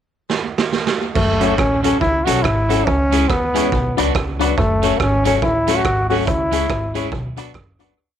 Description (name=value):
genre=ska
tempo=141 BPM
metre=4/4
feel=swing 59% on 8ths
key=F# minor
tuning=A4 = 440 Hz
part: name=raw garage drum kit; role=drums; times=0.3-7.9 s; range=crash cymbal, hi-hat, kick drum, rim click, snare drum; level=-21 LUFS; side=right 3 dB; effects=tape echo
part: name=bright trombone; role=melody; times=1.1-7.1 s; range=A3 to F#4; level=-19 LUFS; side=equal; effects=none
part: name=upright bass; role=bass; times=1.2-7.9 s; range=F#1 to E2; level=-22 LUFS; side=equal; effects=none
part: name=electric guitar at the edge of break-up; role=accompaniment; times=1.4-7.9 s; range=F#3 to A4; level=-25 LUFS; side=right 11 dB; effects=none
part: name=dark upright piano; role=stabs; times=1.4-7.9 s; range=C#4 to D5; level=-22 LUFS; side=left 11 dB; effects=none
room=moderate spring reverb, RT60 1.4 s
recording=1960s-style stereo with parts hard left and right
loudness=-15 LUFS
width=side -9 dB against mid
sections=0.0-1.2 pickup bar; 1.2-8.0 head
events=drum fill 0.3-1.2; fade-out 6.3-8.0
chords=0.0 N.C.; 1.2 F#m; 2.9 C#m; 3.7 Bm; 4.6 F#m; 6.3 C#m; 7.1 Bm